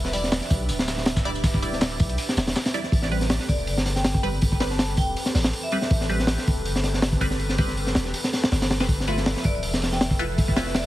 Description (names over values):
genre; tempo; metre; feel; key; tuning
drum and bass, jungle; 161 BPM; 4/4; swing 53% on 16ths; A minor; A4 = 439 Hz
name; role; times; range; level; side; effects
airy breathy pad; sustained chords; 0.0-10.9 s; F3 to E5; -33 LUFS; equal; chorus
long sustained 808-style bass; bass; 0.0-10.9 s; D1 to B1; -27 LUFS; equal; none
crunchy breakbeat drum kit; drums; 0.0-10.8 s; hi-hat, kick drum, snare drum; -23 LUFS; equal; none
dusty soul sampler-style drum kit; drums; 0.0-2.8 s; hi-hat, snare drum, tambourine; -35 LUFS; equal; overdrive, high-pass filter on perc, high-pass filter on hats, high-pass filter on snare, high-pass filter on room
filtered dub chord stab; stabs; 0.1-10.9 s; G3 to D5; -31 LUFS; right 1 dB; phaser, dub echo
vibraphone with medium hard mallets; melody; 3.5-6.0, 9.5-10.8 s; D5 to A5; -34 LUFS; equal; vintage 12-bit sampler grit, dub echo
room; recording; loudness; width
light reverb, studio reverb; heavily compressed radio sound, vinyl crackle; -21 LUFS; side -15 dB against mid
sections
0.0-2.9 A section; 2.9-10.9 A section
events
drop 0.0-2.9, 2.9-10.9; kick drops out 2.2-2.9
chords
0.0 Em7; 2.9 Am9; 8.9 G13